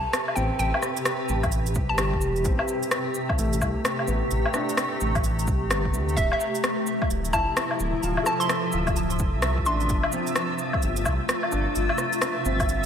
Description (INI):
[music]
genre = future garage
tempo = 129 BPM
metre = 4/4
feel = swing 63% on 16ths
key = A minor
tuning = A4 = 440 Hz
[part]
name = hollow square pluck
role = melody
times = 0.0-2.2, 6.2-10.0 s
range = E5 to C6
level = -30 LUFS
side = right 1 dB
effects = chorus, cassette tape, diffuse ambient delay
[part]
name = felt-muted upright piano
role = accompaniment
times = 0.0-12.9 s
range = G3 to C5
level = -34 LUFS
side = left 2 dB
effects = vintage 12-bit sampler grit, sidechain pumping, diffuse ambient delay
[part]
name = granular cloud pad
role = sustained chords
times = 0.0-12.9 s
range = C3 to B4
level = -29 LUFS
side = left 1 dB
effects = built-in reverb, vintage 12-bit sampler grit, sidechain pumping
[part]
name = dark detuned saw bass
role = bass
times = 0.0-12.9 s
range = D1 to D2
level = -27 LUFS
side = equal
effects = tube saturation, sidechain pumping
[part]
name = electronic rim click, shaker, woodblock and cabasa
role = drums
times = 0.1-12.9 s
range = none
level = -28 LUFS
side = left 1 dB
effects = none
[part]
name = electronic kick drum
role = drums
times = 1.4-12.7 s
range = none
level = -28 LUFS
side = equal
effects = none
[part]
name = backwards swelling texture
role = texture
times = 7.0-12.9 s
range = E5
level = -35 LUFS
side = right 3 dB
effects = built-in reverb, analog chorus
[sound]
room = moderate lush hall reverb, RT60 1.8 s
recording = dreamy mix soaked in reverb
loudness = -22 LUFS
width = side -8 dB against mid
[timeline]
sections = 0.0-12.9 A section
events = none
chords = 0.0 Am9; 6.2 Dm9; 9.9 G9sus4